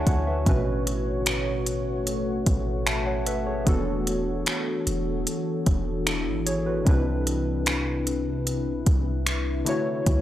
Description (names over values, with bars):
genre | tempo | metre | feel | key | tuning
contemporary R&B | 75 BPM | 4/4 | straight | unclear | A4 = 440 Hz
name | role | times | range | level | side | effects
warm analog keys | accompaniment | 0.0-10.2 s | B2 to C#6 | -28 LUFS | equal | chorus
deep dark ambient pad | sustained chords | 0.0-10.2 s | C3 to C#5 | -30 LUFS | left 2 dB | chorus, built-in reverb
warm 808-style bass | bass | 0.0-10.2 s | E1 to D2 | -29 LUFS | equal | none
smooth R&B drum kit | drums | 0.1-10.2 s | finger snaps, hi-hat, kick drum | -25 LUFS | equal | none
room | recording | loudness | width
little or no reverb | dry, gritty hardware recording | -23 LUFS | side -12 dB against mid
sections
0.0-10.2 A section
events
none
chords
0.5 A69; 3.7 E9sus4; 6.9 Cmaj9; 9.7 Dmaj9